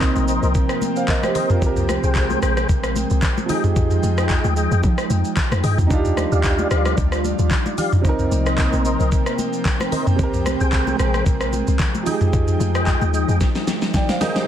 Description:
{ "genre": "amapiano", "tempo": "112 BPM", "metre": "4/4", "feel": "swing 55% on 16ths", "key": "unclear", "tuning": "A4 = 443 Hz", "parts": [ { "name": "warm concert grand piano", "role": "accompaniment", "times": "0.0-14.5 s", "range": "C3 to G5", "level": "-25 LUFS", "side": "right 4 dB", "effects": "none" }, { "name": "airy breathy pad", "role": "sustained chords", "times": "0.0-14.5 s", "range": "F3 to G5", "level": "-26 LUFS", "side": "equal", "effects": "chorus, sidechain pumping" }, { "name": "tonewheel organ", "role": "stabs", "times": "0.0-14.5 s", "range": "G4 to G5", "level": "-26 LUFS", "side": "left 2 dB", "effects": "chorus vibrato, slow rotary speaker, digital delay" }, { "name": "deep log drum bass", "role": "bass", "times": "0.0-13.4 s", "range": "Bb1 to F3", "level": "-21 LUFS", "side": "equal", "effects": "none" }, { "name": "smooth R&B drum kit", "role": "drums", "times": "0.0-14.5 s", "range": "handclaps, hi-hat, kick drum, rim click, shaker, snare drum, toms", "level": "-21 LUFS", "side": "equal", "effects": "vintage 12-bit sampler grit" }, { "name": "congas", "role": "percussion", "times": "0.2-14.3 s", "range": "none", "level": "-29 LUFS", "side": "left 3 dB", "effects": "none" } ], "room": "little or no reverb", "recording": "dense, heavily limited modern master", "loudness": "-17 LUFS", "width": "side -10 dB against mid", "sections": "0.0-14.5 A section", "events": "drop 0.0-14.5; drum fill 13.4-14.5", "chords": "0.0 Cm7; 1.6 Abmaj7; 3.5 Fm9; 5.9 Ebmaj9; 8.0 Cm7; 10.2 Abmaj7; 12.1 Fm9" }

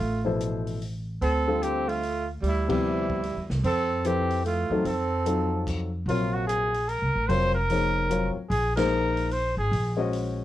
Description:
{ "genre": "modal jazz", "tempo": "148 BPM", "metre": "3/4", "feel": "swing 64% on 8ths", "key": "D dorian, Bb minor from 6.1 s", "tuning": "A4 = 439 Hz", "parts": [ { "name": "warm trumpet", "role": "melody", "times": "0.0-10.0 s", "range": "E4 to C5", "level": "-28 LUFS", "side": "equal", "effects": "none" }, { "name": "breathy tenor saxophone", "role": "second line", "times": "0.0-5.6 s", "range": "G3 to C4", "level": "-30 LUFS", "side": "right 4 dB", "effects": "none" }, { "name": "upright bass", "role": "bass", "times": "0.0-10.4 s", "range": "F1 to F2", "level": "-29 LUFS", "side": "equal", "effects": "none" }, { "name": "warm concert grand piano", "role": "accompaniment", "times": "0.2-10.4 s", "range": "B2 to Eb5", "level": "-28 LUFS", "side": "left 4 dB", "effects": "none" }, { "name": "open jazz drum kit", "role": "drums", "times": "0.4-10.3 s", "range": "crash cymbal, hi-hat, kick drum, ride cymbal, snare drum", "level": "-40 LUFS", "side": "equal", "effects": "none" } ], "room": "light reverb", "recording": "worn, warbling old tape, cassette tape, warbly pitch drift", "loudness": "-24 LUFS", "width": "side -13 dB against mid", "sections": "0.0-6.1 A section; 6.1-10.4 B section", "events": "band accent 2.6, 8.7; stop 5.7-6.1", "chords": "0.0 Dm11; 4.9 F7b9; 6.1 Bbm9" }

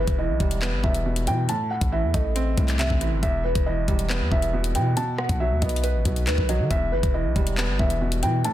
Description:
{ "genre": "hip hop, drill", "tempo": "138 BPM", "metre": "4/4", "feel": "half-time", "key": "E harmonic minor", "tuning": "A4 = 439 Hz", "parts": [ { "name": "dark concert grand piano", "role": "melody", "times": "0.0-8.5 s", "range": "B4 to A5", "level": "-28 LUFS", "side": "right 1 dB", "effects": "none" }, { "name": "felt-muted upright piano", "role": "accompaniment", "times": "0.0-8.5 s", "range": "E2 to B4", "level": "-28 LUFS", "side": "right 3 dB", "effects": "none" }, { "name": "long sustained 808-style bass", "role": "bass", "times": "0.0-8.4 s", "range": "E1 to D#3", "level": "-25 LUFS", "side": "left 1 dB", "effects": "none" }, { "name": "drill drum kit", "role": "drums", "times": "0.1-8.5 s", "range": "handclaps, hi-hat, kick drum, rim click", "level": "-26 LUFS", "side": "equal", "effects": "none" } ], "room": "little or no reverb", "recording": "dense, heavily limited modern master", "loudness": "-21 LUFS", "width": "side -13 dB against mid", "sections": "0.0-8.5 A section", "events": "none", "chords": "0.0 Em; 1.5 Am; 3.2 Em; 5.0 B; 6.7 Em" }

